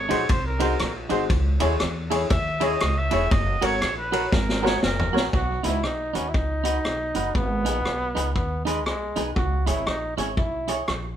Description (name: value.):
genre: ska.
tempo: 119 BPM.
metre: 4/4.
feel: swing 60% on 8ths.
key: B major.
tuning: A4 = 440 Hz.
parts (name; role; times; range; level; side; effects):
breathy trumpet; melody; 0.0-5.3 s; A#4 to E5; -27 LUFS; right 1 dB; none.
upright bass; bass; 0.0-11.1 s; E1 to E2; -27 LUFS; equal; none.
clean electric guitar; accompaniment; 0.1-10.8 s; D#4 to C#5; -28 LUFS; right 3 dB; tape echo.
clear upright piano; stabs; 0.1-5.3 s; E4 to C#5; -29 LUFS; left 6 dB; none.
vintage drum kit; drums; 0.1-11.0 s; hi-hat, kick drum, ride cymbal, rim click, snare drum, toms; -26 LUFS; equal; tape echo.
brilliant trombone; melody; 5.3-10.8 s; G#3 to F#4; -28 LUFS; equal; none.
room: light reverb.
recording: band playing live in one room.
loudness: -21 LUFS.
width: side -10 dB against mid.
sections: 0.0-5.3 A section; 5.3-11.2 B section.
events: trumpet solo 0.0-5.3; drum fill 4.3-5.3.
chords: 0.0 G#7; 1.3 C#m; 3.3 F#; 5.3 B; 7.3 G#m; 9.4 C#m.